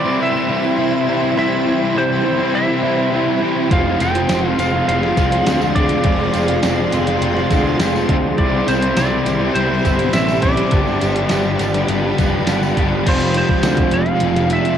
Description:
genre	rock, shoegaze and dream pop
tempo	103 BPM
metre	4/4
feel	straight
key	C major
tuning	A4 = 441 Hz
part	lightly driven lead guitar	melody	0.0-14.8 s	C5 to G5	-22 LUFS	equal	cassette tape, analog delay
part	granular cloud pad	sustained chords	0.0-14.8 s	E4 to C6	-23 LUFS	equal	built-in reverb
part	distorted electric guitar	riff	0.0-14.8 s	G2 to F4	-24 LUFS	equal	distortion
part	overdriven electric guitar	riff	0.0-14.8 s	F2 to G4	-22 LUFS	right 10 dB	reverse reverb
part	thick fuzz guitar	riff	0.1-14.8 s	F2 to C4	-22 LUFS	left 9 dB	distortion, wide subtle chorus
part	fuzz picked electric bass	bass	3.7-14.6 s	F1 to D2	-22 LUFS	equal	overdrive
part	clean 12-bit digital drum machine	drums	3.7-14.8 s	crash cymbal, hi-hat, kick drum, snare drum	-21 LUFS	equal	none
part	tambourine	percussion	4.0-13.8 s	none	-37 LUFS	right 7 dB	none
room	light reverb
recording	home recording on cassette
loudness	-14 LUFS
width	side -9 dB against mid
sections	0.0-13.1 A section; 13.1-14.8 B section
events	none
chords	0.0 C; 3.7 Fm6; 8.4 C; 10.7 G7; 13.1 Fm6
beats	0.20 0.78 | 1.37 1.96 2.54 3.13 | 3.71 4.30 4.88 5.47 | 6.05 6.64 7.22 7.81 | 8.39 8.97 9.56 10.14 | 10.73 11.31 11.89 12.48 | 13.06 13.64 14.22

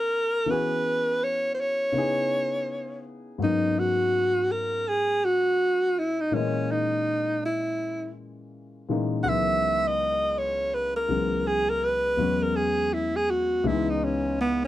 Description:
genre	hip hop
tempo	82 BPM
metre	4/4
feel	swing 60% on 16ths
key	C# dorian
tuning	A4 = 436 Hz
part	breathy alto saxophone	melody	0.0-14.7 s	B3 to F#5	-24 LUFS	right 1 dB	none
part	dark concert grand piano	accompaniment	0.0-14.7 s	C#2 to D#5	-29 LUFS	left 3 dB	none
room	light reverb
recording	none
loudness	-23 LUFS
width	side -14 dB against mid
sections	0.0-3.4 A section; 3.4-14.7 B section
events	alto saxophone solo 3.4-14.7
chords	0.5 E69; 2.0 C#m7; 3.4 G#m11; 6.3 C#m69/A#; 9.3 C#m11; 12.2 E69; 13.7 C#m7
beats	| 0.49 1.22 1.95 2.68 | 3.42 4.15 4.88 5.61 | 6.34 7.07 7.80 8.54 | 9.27 10.00 10.73 11.46 | 12.20 12.93 13.66 14.39

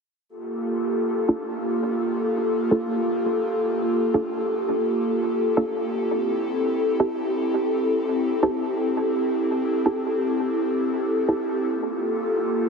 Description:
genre	drum and bass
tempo	free time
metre	none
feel	none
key	G dorian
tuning	A4 = 438 Hz
part	airy breathy pad	sustained chords	0.3-12.7 s	Bb3 to A4	-22 LUFS	equal	chorus, vintage 12-bit sampler grit
part	filtered dub chord stab	stabs	1.3-11.3 s	Bb3 to A4	-28 LUFS	right 1 dB	wide subtle chorus, dub echo
room	wet plate reverb, RT60 3.6 s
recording	heavily compressed radio sound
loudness	-21 LUFS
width	side -5 dB against mid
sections	0.3-12.7 A section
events	none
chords	0.3 Gm9; 6.0 Am7; 11.7 Gm9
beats	free time

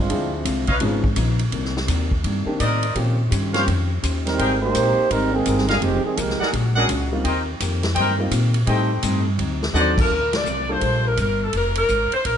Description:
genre	jazz, big band swing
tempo	168 BPM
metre	4/4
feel	swing 64% on 8ths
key	G minor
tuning	A4 = 441 Hz
part	clear trombone section	second line	0.0-0.3, 4.2-6.5 s	Eb3 to C5	-21 LUFS	right 3 dB	none
part	upright bass	bass	0.0-12.4 s	F1 to Bb2	-22 LUFS	equal	none
part	hollow-body jazz guitar	accompaniment	0.1-10.0 s	A2 to C5	-29 LUFS	left 5 dB	none
part	warm grand piano	accompaniment	0.1-11.2 s	Eb3 to G5	-27 LUFS	equal	none
part	swinging big-band drum kit	drums	0.1-12.4 s	crash cymbal, hi-hat, kick drum, ride cymbal, snare drum	-26 LUFS	equal	none
part	warm trumpet section	stabs	0.7-9.9 s	G4 to G5	-24 LUFS	left 1 dB	none
part	clear saxophone section	melody	9.8-12.4 s	A4 to D5	-21 LUFS	left 1 dB	none
room	moderate large studio reverb, RT60 1.2 s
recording	nothing above 10.8 kHz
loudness	-18 LUFS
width	side -8 dB against mid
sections	0.0-10.1 A section; 10.1-12.4 B section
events	trombone section solo 0.0-10.1; drum fill 9.7-10.1; band accent 9.9, 10.3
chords	0.1 Dm7b5; 0.8 C#9; 1.5 Cm9; 3.0 Eb13; 4.4 Abmaj9; 5.8 Fm11; 6.5 Bb7alt; 7.2 Eb6; 8.7 Am7b5; 9.4 D7b9; 10.1 Gm7; 11.5 Fm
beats	| 0.10 0.46 0.81 1.17 | 1.53 1.89 2.25 2.60 | 2.96 3.32 3.68 4.03 | 4.39 4.75 5.11 5.46 | 5.82 6.18 6.54 6.89 | 7.25 7.61 7.96 8.32 | 8.68 9.04 9.39 9.75 | 10.11 10.46 10.82 11.18 | 11.54 11.89 12.25

